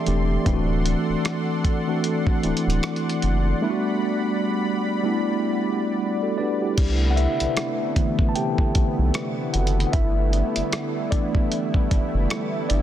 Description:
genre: contemporary R&B.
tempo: 76 BPM.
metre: 4/4.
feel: swing 58% on 16ths.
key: unclear.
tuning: A4 = 440 Hz.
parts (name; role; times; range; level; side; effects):
mellow tine electric piano; accompaniment; 0.0-12.8 s; D3 to A5; -24 LUFS; equal; medium stereo tremolo.
lush unison pad; sustained chords; 0.0-12.8 s; C3 to C6; -28 LUFS; right 1 dB; chorus.
saturated sub bass; bass; 0.1-12.8 s; D1 to C2; -22 LUFS; equal; none.
dusty soul sampler-style drum kit; drums; 0.1-12.8 s; crash cymbal, hi-hat, kick drum, rim click; -24 LUFS; equal; vintage 12-bit sampler grit, soft clipping on snare.
room: little or no reverb.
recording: dense, heavily limited modern master.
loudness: -20 LUFS.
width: side -11 dB against mid.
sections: 0.0-6.8 A section; 6.8-12.8 B section.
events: tine electric piano fill 0.0-0.5; drums muted 3.6-6.8; tine electric piano solo 6.8-12.8.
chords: 0.5 D7; 3.6 Gmaj7; 6.8 Cmaj13; 9.9 G69.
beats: | 0.46 1.25 2.04 2.83 | 3.62 4.41 5.20 5.99 | 6.78 7.57 8.36 9.14 | 9.94 10.72 11.51 12.30.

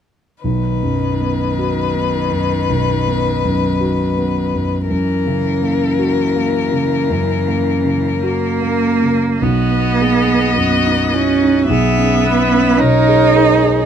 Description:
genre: classical, slow romantic movement for piano quartet.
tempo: 54 BPM.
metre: 4/4.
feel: rubato.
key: B major.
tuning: A4 = 440 Hz.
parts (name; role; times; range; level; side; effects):
warm violin; melody; 0.4-13.9 s; A#4 to E5; -20 LUFS; left 9 dB; none.
rich cello; second line; 0.4-13.9 s; D#3 to D#4; -18 LUFS; right 5 dB; none.
dark grand piano; accompaniment; 0.4-13.9 s; B1 to A#4; -17 LUFS; equal; none.
rich viola; accompaniment; 9.4-13.9 s; F#4 to B4; -23 LUFS; right 1 dB; none.
room: moderate studio ambience, RT60 0.5 s.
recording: dark, warm production.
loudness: -13 LUFS.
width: side -8 dB against mid.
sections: 0.4-9.4 A section; 9.4-13.9 B section.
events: none.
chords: 0.4 B; 4.9 F#7; 9.4 B; 11.7 C#m7/B.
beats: | 0.43 1.58 2.70 3.81 | 4.89 5.97 7.08 8.22 | 9.42 10.56 11.69 12.80.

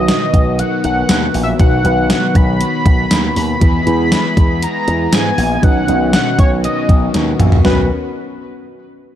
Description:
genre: 1980s-style pop.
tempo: 119 BPM.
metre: 4/4.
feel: straight.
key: B major.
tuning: A4 = 439 Hz.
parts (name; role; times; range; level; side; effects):
octave-doubled lead; melody; 0.0-7.9 s; B4 to B5; -20 LUFS; equal; chorus, digital delay.
mellow FM electric piano; accompaniment; 0.0-7.9 s; B1 to D#5; -21 LUFS; equal; chorus, phaser.
overdriven semi-hollow guitar; accompaniment; 0.0-7.9 s; B2 to E4; -26 LUFS; left 1 dB; none.
warm analog pad; sustained chords; 0.0-7.9 s; D#3 to G#4; -22 LUFS; left 2 dB; chorus.
slap bass with an envelope filter; bass; 0.0-7.9 s; A#1 to G#2; -18 LUFS; equal; none.
gated 80s digital drum machine; drums; 0.1-7.8 s; hi-hat, kick drum, snare drum, tambourine, toms; -13 LUFS; equal; gated reverb, gated reverb snare, overdrive.
room: light reverb, digital ambience.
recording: dark, warm production.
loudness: -11 LUFS.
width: side -11 dB against mid.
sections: 0.0-7.6 A section; 7.6-9.2 B section.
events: drum fill 7.1-7.6.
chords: 0.0 B; 3.6 E; 5.6 Badd9.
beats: 0.09 0.59 1.09 | 1.60 2.10 2.61 3.11 | 3.62 4.12 4.62 5.13 | 5.63 6.14 6.64 7.14 | 7.65.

